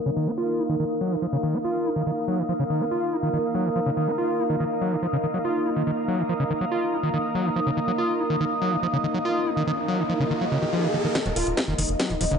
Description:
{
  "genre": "psychedelic trance",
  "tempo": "142 BPM",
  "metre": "4/4",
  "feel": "straight",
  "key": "unclear",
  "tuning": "A4 = 439 Hz",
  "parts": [
    { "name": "overtone-sweeping drone", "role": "sustained chords", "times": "0.0-12.4 s", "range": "Bb3 to Eb5", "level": "-28 LUFS", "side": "equal", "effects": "chorus, built-in reverb, sidechain pumping" },
    { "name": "ethereal airy pad", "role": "texture", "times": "0.0-12.4 s", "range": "Eb4 to Eb6", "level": "-29 LUFS", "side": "right 2 dB", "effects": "ensemble chorus, built-in reverb, sidechain pumping" },
    { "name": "screaming distorted acid line", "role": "riff", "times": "0.1-12.4 s", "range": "Db3 to F4", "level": "-26 LUFS", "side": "equal", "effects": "distortion, chorus, auto-pan, sidechain pumping, dub echo" },
    { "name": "riser", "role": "sound effects", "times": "9.0-12.4 s", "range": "none", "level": "-32 LUFS", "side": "equal", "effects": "none" },
    { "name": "electronic kick drum", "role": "drums", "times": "11.2-12.1 s", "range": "none", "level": "-28 LUFS", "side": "equal", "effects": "distortion, high-pass filter on kick, studio reverb" },
    { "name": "techno drum kit", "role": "drums", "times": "11.2-12.4 s", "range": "hi-hat, snare drum", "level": "-28 LUFS", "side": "left 1 dB", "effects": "studio reverb" },
    { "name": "tight sequencer bass", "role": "bass", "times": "11.3-12.4 s", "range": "Eb1 to Gb1", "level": "-28 LUFS", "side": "equal", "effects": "tube saturation" }
  ],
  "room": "moderate digital room reverb, RT60 1.4 s, digital ambience",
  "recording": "low-pass filter, nothing above 10.4 kHz",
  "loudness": "-22 LUFS",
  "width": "side -6 dB against mid",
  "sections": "0.0-11.2 A section; 11.2-12.4 B section",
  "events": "filter sweep on acid bass 0.0-11.2, 11.2-12.4; filter sweep 0.0-11.2; riser 9.0-11.2, 11.2-12.4; build-up 11.2-12.4; drum fill 11.2-12.4",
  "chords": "0.0 Eb5"
}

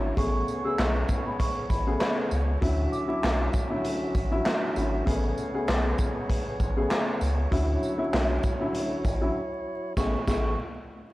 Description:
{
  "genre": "hip hop, boom-bap hip-hop",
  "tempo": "98 BPM",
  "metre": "4/4",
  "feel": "swing 55% on 16ths",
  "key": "A major",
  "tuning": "A4 = 441 Hz",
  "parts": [
    { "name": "dark upright piano", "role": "accompaniment", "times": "0.0-10.5 s", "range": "C#3 to G#4", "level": "-30 LUFS", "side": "left 1 dB", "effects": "cassette tape, high-pass filter, low-pass filter" },
    { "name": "tonewheel organ", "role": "sustained chords", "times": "0.0-10.3 s", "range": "F#3 to E5", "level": "-35 LUFS", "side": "right 1 dB", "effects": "overdrive, stopped rotary speaker, high-pass filter, low-pass filter" },
    { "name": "soft dub sub bass", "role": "bass", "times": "0.0-10.6 s", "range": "G#1 to D2", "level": "-28 LUFS", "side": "equal", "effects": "transformer saturation" },
    { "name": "vibraphone with soft mallets", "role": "melody", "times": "0.2-3.4, 10.0-10.6 s", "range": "B5 to E6", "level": "-34 LUFS", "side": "right 2 dB", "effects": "high-pass filter, low-pass filter, tape echo" },
    { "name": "raw garage drum kit", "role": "drums", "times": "0.2-10.4 s", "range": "handclaps, hi-hat, kick drum, shaker, snare drum", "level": "-28 LUFS", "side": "equal", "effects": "none" },
    { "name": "tambourine", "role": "percussion", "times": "0.5-10.6 s", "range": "none", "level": "-48 LUFS", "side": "right 4 dB", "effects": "none" }
  ],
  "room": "little or no reverb",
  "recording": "dry, gritty hardware recording, vinyl crackle",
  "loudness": "-24 LUFS",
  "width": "side -18 dB against mid",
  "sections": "0.0-10.0 A section; 10.0-11.1 B section",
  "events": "break 9.4-10.0",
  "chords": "0.2 Amaj9; 2.6 Dmaj9; 5.1 Amaj9; 7.5 Dmaj9; 10.0 Amaj9"
}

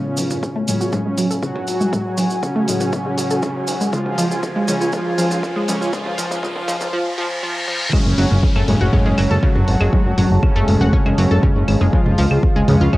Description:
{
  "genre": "melodic techno",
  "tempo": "120 BPM",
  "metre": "4/4",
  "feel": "straight",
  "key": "F# harmonic minor",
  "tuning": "A4 = 439 Hz",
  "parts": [
    { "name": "soft supersaw", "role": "melody", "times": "0.0-13.0 s", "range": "C#3 to F#4", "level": "-24 LUFS", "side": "equal", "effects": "sidechain pumping, cassette tape, tape echo" },
    { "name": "deep dark ambient pad", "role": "sustained chords", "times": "0.0-13.0 s", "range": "G#3 to C#6", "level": "-26 LUFS", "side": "equal", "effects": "chorus, built-in reverb, sidechain pumping" },
    { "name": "synth brass stab", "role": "stabs", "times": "0.0-13.0 s", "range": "A2 to G#3", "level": "-24 LUFS", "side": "left 1 dB", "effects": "chorus, sidechain pumping, tape echo" },
    { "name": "riser, reverse cymbal and downlifter", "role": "sound effects", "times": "2.5-11.9 s", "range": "none", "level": "-30 LUFS", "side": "left 1 dB", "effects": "none" },
    { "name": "fat analog bass", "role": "bass", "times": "0.1-12.9 s", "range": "F#1 to D2", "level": "-20 LUFS", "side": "equal", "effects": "sidechain pumping, high-pass filter" },
    { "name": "analog pluck", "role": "arpeggios", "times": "0.2-13.0 s", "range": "C#3 to A5", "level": "-23 LUFS", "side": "equal", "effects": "chorus, sidechain pumping, tape echo" },
    { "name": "punchy analog drum machine", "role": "drums", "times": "0.2-13.0 s", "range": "claves, crash cymbal, hi-hat, toms", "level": "-26 LUFS", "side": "equal", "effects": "sidechain pumping on toms, high-pass filter on toms, cassette tape, sidechain pumping on hats, high-pass filter on hats, sidechain pumping on cymbals, high-pass filter on cymbals, sidechain pumping on perc, high-pass filter on perc, high-pass filter on room" },
    { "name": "cabasa", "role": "percussion", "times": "0.2-6.9 s", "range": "none", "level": "-29 LUFS", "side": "right 2 dB", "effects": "none" },
    { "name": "electronic kick drum", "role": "drums", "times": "0.4-13.0 s", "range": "none", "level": "-18 LUFS", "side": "equal", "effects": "high-pass filter on kick, cassette tape, high-pass filter on room" }
  ],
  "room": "moderate studio reverb, RT60 0.7 s",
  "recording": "home recording on cassette, high-pass filter",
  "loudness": "-15 LUFS",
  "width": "side -18 dB against mid",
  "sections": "0.0-7.9 A section; 7.9-13.0 B section",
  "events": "build-up 0.0-7.9; drum fill 0.0-6.9; filter sweep on synth pluck 0.0-7.9; filter sweep on synth stab 0.0-7.9; filter sweep 0.0-7.9; riser 2.5-7.9; reverse cymbal 6.9-7.9; drop 7.9-13.0",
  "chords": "0.0 F#madd9; 3.9 C#; 7.9 F#madd9; 11.9 C#"
}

